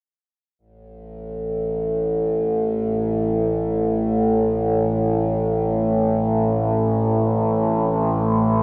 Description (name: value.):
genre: dark ambient drone.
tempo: free time.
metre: none.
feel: none.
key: unclear.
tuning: A4 = 444 Hz.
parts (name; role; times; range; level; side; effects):
deep dark ambient pad; sustained chords; 4.3-8.6 s; A3 to C5; -32 LUFS; equal; none.
overtone-sweeping drone; drone; 1.2-8.6 s; A1 to A2; -21 LUFS; equal; chorus, built-in reverb.
room: wet huge ambient reverb, RT60 7.0 s.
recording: in a vast, echoing space.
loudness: -21 LUFS.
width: mono.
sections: 0.6-8.6 A section.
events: none.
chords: 0.6 Am.